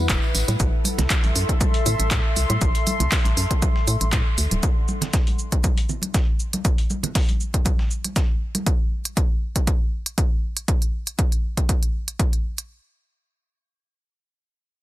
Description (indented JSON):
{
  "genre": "deep house",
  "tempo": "119 BPM",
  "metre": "4/4",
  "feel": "swing 54% on 16ths",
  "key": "unclear",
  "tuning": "A4 = 440 Hz",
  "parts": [
    { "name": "organ-like FM bass", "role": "bass", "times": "0.0-4.6 s", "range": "D1 to A2", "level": "-22 LUFS", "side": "equal", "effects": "tube saturation, sidechain pumping" },
    { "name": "warbly tape-like pad", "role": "texture", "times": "0.0-4.6 s", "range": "E4 to C6", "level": "-29 LUFS", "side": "left 2 dB", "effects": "chorus, built-in reverb, sidechain pumping" },
    { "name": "deep house drum kit", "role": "drums", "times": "0.1-12.7 s", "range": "handclaps, hi-hat", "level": "-26 LUFS", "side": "right 1 dB", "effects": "none" },
    { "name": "dusty soul sampler-style drum kit", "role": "drums", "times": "0.1-8.3 s", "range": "hi-hat, shaker, snare drum", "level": "-33 LUFS", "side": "equal", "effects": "sidechain pumping on perc, high-pass filter on perc, high-pass filter on snare, sidechain pumping on hats, high-pass filter on hats" },
    { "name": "electronic kick drum", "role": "drums", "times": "0.1-12.3 s", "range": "none", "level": "-21 LUFS", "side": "equal", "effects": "none" },
    { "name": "tambourine", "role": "percussion", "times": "0.1-0.6 s", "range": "none", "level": "-33 LUFS", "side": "left 2 dB", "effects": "none" },
    { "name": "congas", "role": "percussion", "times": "0.5-8.6 s", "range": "none", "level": "-31 LUFS", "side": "right 2 dB", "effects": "none" }
  ],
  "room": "little or no reverb",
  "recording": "dense, heavily limited modern master",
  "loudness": "-19 LUFS",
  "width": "side -16 dB against mid",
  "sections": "0.0-12.7 A section; 12.7-14.8 B section",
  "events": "none",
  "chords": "0.3 Am; 4.4 Dadd9; 8.7 N.C.",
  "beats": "0.09 | 0.60 1.10 1.61 2.11 | 2.61 3.12 3.62 4.13 | 4.63 5.13 5.64 6.14 | 6.65 7.15 7.66 8.16 | 8.66 9.17 9.67 10.18 | 10.68 11.19 11.69 12.19"
}